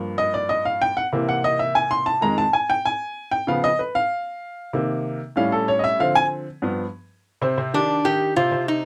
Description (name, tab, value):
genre	jazz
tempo	190 BPM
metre	4/4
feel	straight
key	C minor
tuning	A4 = 440 Hz
part	clear upright piano	accompaniment	0.0-8.8 s	F2 to C6	-23 LUFS	equal	none
part	metal-body resonator slide guitar	melody	7.7-8.8 s	D4 to G4	-22 LUFS	equal	none
room	light reverb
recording	dry, close 1970s-style studio recording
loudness	-22 LUFS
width	mono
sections	0.0-7.3 A section; 7.3-8.8 B section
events	upright piano solo 0.0-7.3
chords	0.0 Gm7; 1.0 C7; 2.2 Fm7; 3.5 Db7; 4.7 Cm7; 5.4 A7; 6.0 Dm7b5; 6.6 G7; 7.3 Cmadd9